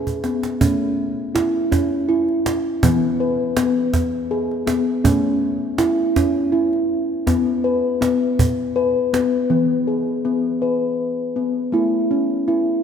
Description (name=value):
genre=world meditative, meditative tuned percussion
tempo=81 BPM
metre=3/4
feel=swing 54% on 16ths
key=E major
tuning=A4 = 445 Hz
part: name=steel tongue drum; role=arpeggios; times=0.0-12.8 s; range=E3 to B4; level=-18 LUFS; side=left 1 dB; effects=none
part: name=cajon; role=percussion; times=0.1-9.3 s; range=none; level=-22 LUFS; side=right 2 dB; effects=none
room=wet concert hall reverb, RT60 2.6 s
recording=none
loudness=-17 LUFS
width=side -7 dB against mid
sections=0.6-9.5 A section; 9.5-12.8 B section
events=drum fill 0.1-0.6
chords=0.0 N.C.; 0.6 A; 2.8 E; 5.0 A; 7.3 N.C.; 9.5 E; 11.7 A